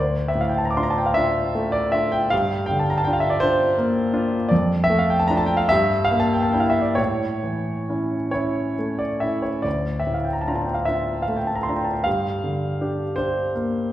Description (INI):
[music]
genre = classical, romantic nocturne for solo piano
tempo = 43-57 BPM (dotted quarters)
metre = 12/8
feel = rubato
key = D minor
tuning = A4 = 440 Hz
[part]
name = clear grand piano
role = solo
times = 0.0-13.9 s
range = D2 to D6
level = -19 LUFS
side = equal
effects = none
[sound]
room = wet recital hall reverb, RT60 1.6 s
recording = heard from further back in the room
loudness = -19 LUFS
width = side -13 dB against mid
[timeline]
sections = 0.0-13.9 A section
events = none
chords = 0.0 Dm; 2.3 Gm7; 4.5 Dm/F; 5.7 Em7b5/G; 7.0 A; 9.7 Dm; 12.1 Gm7